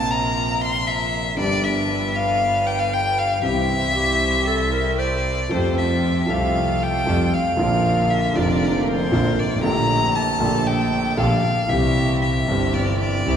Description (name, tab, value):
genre	tango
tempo	116 BPM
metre	4/4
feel	rubato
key	F major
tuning	A4 = 438 Hz
part	clear violin	second line	0.0-13.4 s	C5 to C6	-22 LUFS	left 2 dB	none
part	warm concert grand piano	accompaniment	0.0-13.4 s	F1 to G4	-22 LUFS	equal	none
part	bright chamber string section	stabs	0.0-13.4 s	A3 to C5	-30 LUFS	right 2 dB	none
part	clear double bass	bass	0.0-13.4 s	F1 to F2	-25 LUFS	right 1 dB	none
part	mellow clarinet	second line	3.9-5.5 s	G4 to C5	-28 LUFS	equal	none
room	wet church reverb, RT60 3.2 s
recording	recorded in a church or concert hall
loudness	-18 LUFS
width	side -8 dB against mid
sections	0.0-5.5 A section; 5.5-13.4 A section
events	violin solo 0.0-5.5, 5.5-13.4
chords	0.0 Bbsus2; 1.4 G; 3.4 C; 5.5 Fadd9; 7.6 Bb; 9.6 Gmadd9/Bb; 11.7 C